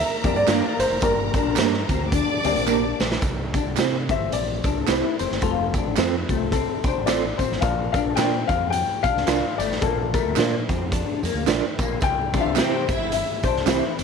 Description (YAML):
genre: uptempo 1960s-style soul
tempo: 109 BPM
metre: 4/4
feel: swing 58% on 8ths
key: unclear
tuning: A4 = 440 Hz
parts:
  - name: dark grand piano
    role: melody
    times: 0.0-2.6 s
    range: Bb4 to E5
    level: -25 LUFS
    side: right 1 dB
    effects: none
  - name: warm studio string section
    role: second line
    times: 0.0-3.2, 12.3-13.4 s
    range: E4 to D6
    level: -28 LUFS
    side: right 1 dB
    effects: none
  - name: dark upright piano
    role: accompaniment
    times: 0.2-14.0 s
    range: G2 to G5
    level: -26 LUFS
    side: left 12 dB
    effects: none
  - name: electric guitar through a small old amp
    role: riff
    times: 0.2-14.0 s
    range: A3 to F4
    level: -29 LUFS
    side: left 13 dB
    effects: ensemble chorus
  - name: modern bright fingered electric bass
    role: bass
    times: 0.2-14.0 s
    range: F1 to C3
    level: -29 LUFS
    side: right 1 dB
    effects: none
  - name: raw garage drum kit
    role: drums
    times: 0.2-14.0 s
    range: hi-hat, kick drum, snare drum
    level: -25 LUFS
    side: right 1 dB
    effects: none
  - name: tambourine and handclaps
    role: percussion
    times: 0.2-14.0 s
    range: none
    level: -35 LUFS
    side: right 14 dB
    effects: none
  - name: mellow electric guitar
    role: stabs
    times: 0.5-13.8 s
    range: Bb3 to D5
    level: -25 LUFS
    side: right 14 dB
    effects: tremolo
room: light reverb, studio reverb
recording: 1960s-style stereo with parts hard left and right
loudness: -20 LUFS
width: side -6 dB against mid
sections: 0.0-3.2 A section; 3.2-14.0 B section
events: drum fill 2.7-3.2; upright piano solo 3.2-14.0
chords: 0.0 Gm; 3.2 C; 5.4 F; 7.6 Bb; 12.0 C